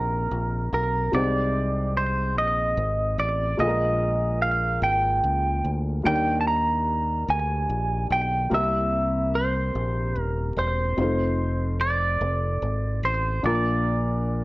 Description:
slow gospel; 49 BPM (dotted quarters); 6/8; straight; Eb major; A4 = 439 Hz
clean electric guitar; melody; 0.0-14.4 s; Bb4 to Bb5; -25 LUFS; right 1 dB; slapback echo
warm upright piano; accompaniment; 0.0-14.4 s; Bb2 to C5; -30 LUFS; left 1 dB
fingered electric bass; bass; 0.0-14.4 s; Eb1 to Eb2; -26 LUFS; equal
light reverb, small room ambience; worn, warbling old tape, cassette tape, warbly pitch drift; -22 LUFS; side -20 dB against mid
0.0-14.4 A section
0.0 Cm7; 1.1 Abmaj7/C; 3.6 Bb7; 6.0 Ebmaj7; 8.5 C7; 11.0 F7; 13.4 Bb
| 1.13 2.36 | 3.59 4.82 | 6.05 7.28 | 8.51 9.74 | 10.97 12.21 | 13.44

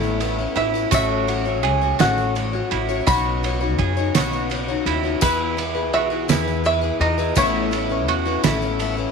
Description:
indie folk with a building arrangement; 56 BPM (dotted quarters); 6/8; straight; E major; A4 = 436 Hz
bluegrass banjo; melody; 0.0-9.1 s; B4 to B5; -24 LUFS; equal; tape echo
picked plugged-in twelve-string acoustic guitar; accompaniment; 0.0-9.1 s; A2 to C#5; -24 LUFS; left 15 dB
tonewheel organ; sustained chords; 0.0-9.1 s; C#3 to B4; -34 LUFS; right 11 dB; slow rotary speaker, chorus vibrato
bowl-back mandolin; arpeggios; 0.0-9.1 s; D#4 to G#4; -26 LUFS; right 12 dB
upright bass; bass; 0.0-9.0 s; A1 to F#2; -26 LUFS; left 1 dB
tambourine; percussion; 0.0-8.9 s; -34 LUFS; left 18 dB
cloth-damped thuddy drum kit; drums; 0.2-9.0 s; kick drum, ride cymbal, snare drum; -25 LUFS; right 5 dB
light reverb, small room reverb; 1960s-style stereo with parts hard left and right; -18 LUFS; side -5 dB against mid
0.0-9.1 A section
0.0 Aadd9; 0.9 F#m/A; 3.1 Badd9; 5.2 E; 7.4 Aadd9
| 0.92 2.00 | 3.07 4.14 | 5.22 6.29 | 7.37 8.44

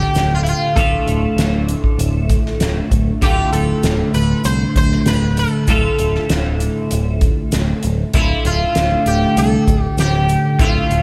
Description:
psychedelic rock; 98 BPM; 4/4; straight; D minor; A4 = 436 Hz
sitar; melody; 0.0-11.0 s; E4 to C5; -23 LUFS; equal; analog delay
twelve-string electric guitar; riff; 0.0-11.0 s; D2 to F4; -21 LUFS; equal; phaser, double-tracked
picked electric bass; bass; 0.0-11.0 s; D1 to C2; -21 LUFS; equal
soft-mallet drum kit; drums; 0.0-11.0 s; hi-hat, kick drum, snare drum; -22 LUFS; equal
tube shaker; percussion; 0.1-11.0 s; -37 LUFS; equal
small room ambience; -16 LUFS; mono
0.0-11.0 A section
0.0 Dm
0.15 | 0.76 1.38 1.99 2.60 | 3.22 3.83 4.45 5.06 | 5.68 6.29 6.91 7.52 | 8.14 8.75 9.37 9.98 | 10.59

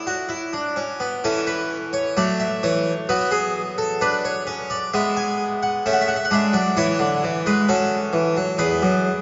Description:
classical, baroque-style 3-part fugue for harpsichord; 65 BPM; 4/4; straight; A major; A4 = 440 Hz
harpsichord; solo; 0.0-9.2 s; E2 to G#5; -22 LUFS; equal
wet cathedral reverb, RT60 5.2 s; recorded in a church or concert hall, nothing above 7.7 kHz; -22 LUFS; mono
0.0-1.2 A section; 1.2-9.2 B section
0.0 A; 1.2 A/E; 3.1 Bm7/F#; 4.9 E7/G#; 6.8 A; 8.6 E
0.31 | 1.25 2.17 3.10 4.02 | 4.93 5.85 6.76 7.67 | 8.58

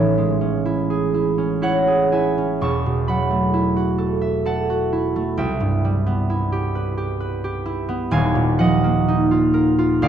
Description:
classical, solo harp piece; 58-67 BPM; 3/4; rubato; A4 = 441 Hz
concert harp; solo; 0.0-10.1 s; D#1 to C#6; -17 LUFS; right 1 dB
moderate concert hall reverb, RT60 1.9 s; dark, warm production; -18 LUFS; side -9 dB against mid
0.0-10.1 A section
0.0 Amaj7; 2.6 Esus24; 5.4 Cmaj7; 8.1 D#madd9
0.66 1.63 | 2.62 3.54 4.45 | 5.38 6.29 7.20 | 8.12 9.07 10.03

